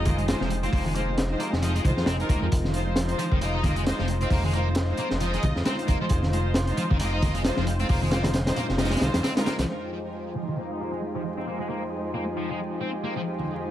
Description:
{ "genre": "breakbeat, breaks", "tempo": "134 BPM", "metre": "4/4", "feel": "swing 58% on 16ths", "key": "F minor", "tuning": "A4 = 439 Hz", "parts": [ { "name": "lush unison pad", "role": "sustained chords", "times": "0.0-13.7 s", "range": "F2 to C5", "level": "-34 LUFS", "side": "left 1 dB", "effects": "chorus, sidechain pumping" }, { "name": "sludgy distorted guitar", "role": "riff", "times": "0.0-13.2 s", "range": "Eb3 to Eb4", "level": "-32 LUFS", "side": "equal", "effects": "overdrive, vintage 12-bit sampler grit, low-pass filter, digital delay" }, { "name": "rich studio string section", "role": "stabs", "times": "0.0-13.7 s", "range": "Ab3 to Eb5", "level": "-31 LUFS", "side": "equal", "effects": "low-pass filter, digital delay" }, { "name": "fat analog bass", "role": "bass", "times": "0.0-9.7 s", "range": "Eb1 to F2", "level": "-27 LUFS", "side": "equal", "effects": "tube saturation" }, { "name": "crunchy breakbeat drum kit", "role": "drums", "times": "0.1-9.7 s", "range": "hi-hat, kick drum, snare drum", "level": "-26 LUFS", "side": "equal", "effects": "none" }, { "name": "congas", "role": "percussion", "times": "0.1-9.1, 13.4-13.5 s", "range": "none", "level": "-33 LUFS", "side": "right 1 dB", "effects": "none" } ], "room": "light reverb", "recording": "vinyl crackle", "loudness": "-23 LUFS", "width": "side -12 dB against mid", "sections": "0.0-9.7 A section; 9.7-13.7 B section", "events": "filter sweep on distorted electric guitar 9.7-13.7", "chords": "0.0 Fm7", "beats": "0.28 | 0.73 1.18 1.62 2.07 | 2.52 2.97 3.42 3.86 | 4.31 4.76 5.21 5.65 | 6.10 6.55 7.00 7.45 | 7.89 8.34 8.79 9.24 | 9.68 10.13 10.58 11.03 | 11.47 11.92 12.37 12.82 | 13.27" }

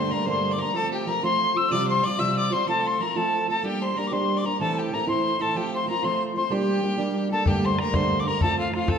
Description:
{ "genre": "celtic folk, Celtic jig", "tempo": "125 BPM (dotted quarters)", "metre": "6/8", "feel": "straight", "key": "G dorian", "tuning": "A4 = 443 Hz", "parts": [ { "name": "wooden whistle", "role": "melody", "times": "0.0-9.0 s", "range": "F5 to E6", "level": "-25 LUFS", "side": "left 2 dB", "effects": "none" }, { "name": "clear fiddle", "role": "second line", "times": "0.0-9.0 s", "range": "F4 to E5", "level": "-31 LUFS", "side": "left 4 dB", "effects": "none" }, { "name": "fingerpicked plugged-in steel-string acoustic guitar", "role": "accompaniment", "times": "0.0-9.0 s", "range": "G2 to G4", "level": "-26 LUFS", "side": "right 3 dB", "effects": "none" }, { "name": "bodhran", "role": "percussion", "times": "7.5-9.0 s", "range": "none", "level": "-26 LUFS", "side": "left 2 dB", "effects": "none" } ], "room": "wet recital hall reverb, RT60 1.4 s", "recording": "minimal, uncompressed stereo recording", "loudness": "-22 LUFS", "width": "side -7 dB against mid", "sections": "0.0-7.5 A section; 7.5-9.0 A section", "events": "none", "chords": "0.0 Gmadd9; 0.8 F; 1.7 Csus4; 2.7 F; 3.6 Gm; 4.6 Am; 5.6 F; 6.5 Gm; 7.5 Gmadd9; 8.4 F", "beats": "0.27 | 0.75 1.23 | 1.72 2.20 | 2.68 3.16 | 3.64 4.12 | 4.60 5.08 | 5.56 6.04 | 6.51 6.99 | 7.47 7.94 | 8.41 8.89" }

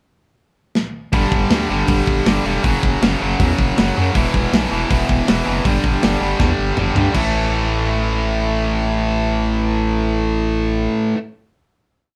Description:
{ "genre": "punk rock", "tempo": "160 BPM", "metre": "4/4", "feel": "straight", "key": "A mixolydian", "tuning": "A4 = 441 Hz", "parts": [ { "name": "tight metal drum kit", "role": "drums", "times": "0.8-7.2 s", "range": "crash cymbal, hi-hat, kick drum, snare drum, toms", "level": "-22 LUFS", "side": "equal", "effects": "none" }, { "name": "distorted electric guitar", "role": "riff", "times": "1.1-11.2 s", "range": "E2 to A3", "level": "-23 LUFS", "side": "equal", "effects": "overdrive" }, { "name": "tight distorted guitar", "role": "riff", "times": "1.1-11.2 s", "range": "E2 to A3", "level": "-25 LUFS", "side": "equal", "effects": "distortion" }, { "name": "growling FM bass", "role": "bass", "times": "1.1-10.9 s", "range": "E1 to G2", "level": "-24 LUFS", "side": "equal", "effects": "none" } ], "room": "moderate studio ambience, RT60 0.5 s", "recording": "band playing live in one room", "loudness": "-18 LUFS", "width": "mono", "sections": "0.0-1.1 pickup bar; 1.1-7.1 verse; 7.1-10.1 final chord", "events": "drum fill 0.8-1.1, 6.4-7.1", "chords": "0.0 N.C.; 1.1 G5; 2.6 F#5; 4.2 E5; 5.7 G5; 7.1 A5", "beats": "0.00 0.37 0.75 | 1.13 1.51 1.89 2.27 | 2.64 3.02 3.40 3.77 | 4.15 4.53 4.90 5.28 | 5.65 6.02 6.40 6.77 | 7.14 7.51 7.89 8.26 | 8.63 9.01 9.38 9.75" }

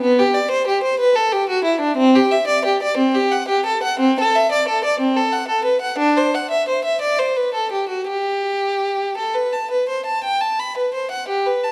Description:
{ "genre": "classical, baroque-style suite movement for unaccompanied violin", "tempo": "55-62 BPM (dotted quarters)", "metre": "12/8", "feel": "rubato", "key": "G major", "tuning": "A4 = 443 Hz", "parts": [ { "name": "clear violin", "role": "solo", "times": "0.0-11.7 s", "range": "B3 to B5", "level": "-19 LUFS", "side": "equal", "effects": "none" } ], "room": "moderate recital hall reverb, RT60 1.5 s", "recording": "dark, warm production", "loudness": "-19 LUFS", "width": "mono", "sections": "0.0-11.7 A section", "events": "none", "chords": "none", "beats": "| 0.01 0.99 1.97 2.95 | 3.98 4.99 5.98 7.01 | 8.08 9.17 10.23 11.30" }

